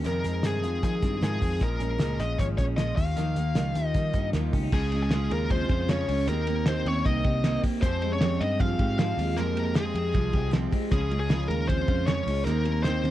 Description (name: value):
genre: jangly indie pop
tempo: 155 BPM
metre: 4/4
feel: straight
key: F minor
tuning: A4 = 440 Hz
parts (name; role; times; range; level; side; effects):
- picked steel-string acoustic guitar; accompaniment; 0.0-13.1 s; F2 to Ab4; -33 LUFS; right 8 dB; none
- electric guitar through a small old amp; arpeggios; 0.0-13.1 s; F2 to G4; -33 LUFS; left 5 dB; none
- vintage muted picked electric bass; bass; 0.0-13.1 s; Ab1 to F3; -29 LUFS; equal; none
- cloth-damped thuddy drum kit; drums; 0.0-13.1 s; crash cymbal, hi-hat, kick drum, ride cymbal, snare drum; -28 LUFS; equal; none
- bluesy overdriven lead guitar; melody; 0.1-13.1 s; Ab4 to F5; -31 LUFS; left 2 dB; distortion
- vibraphone with soft mallets; second line; 4.7-13.1 s; Ab3 to F4; -36 LUFS; right 6 dB; none
room: little or no reverb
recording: dry, close 1970s-style studio recording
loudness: -24 LUFS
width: side -14 dB against mid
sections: 0.0-4.7 A section; 4.7-13.1 B section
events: none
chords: 0.0 Fm7; 1.6 Bbm7; 3.0 Ebadd9; 4.7 Db; 6.3 Eb6; 7.8 Fmadd9; 10.9 Db; 12.5 Eb6